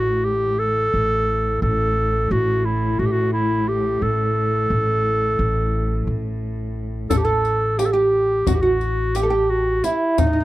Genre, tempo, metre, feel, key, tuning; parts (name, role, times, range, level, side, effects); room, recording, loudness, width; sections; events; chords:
Turkish makam ensemble; 175 BPM (eighths); 9/8; straight; A makam nikriz; A4 = 440 Hz
warm clarinet; melody; 0.0-10.4 s; D#4 to A4; -20 LUFS; equal
upright bass; bass; 0.0-10.4 s; A1; -23 LUFS; equal
clear cello; drone; 0.0-7.2 s; A2; -28 LUFS; left 1 dB; stereo widening
oud; second line; 7.1-10.4 s; D#4 to A4; -22 LUFS; right 4 dB
darbuka; percussion; 7.1-10.3 s; -24 LUFS; left 1 dB
riq; percussion; 7.1-10.3 s; -28 LUFS; left 20 dB
little or no reverb; dry, close 1970s-style studio recording; -18 LUFS; side -16 dB against mid
0.0-7.1 A section; 7.1-10.4 B section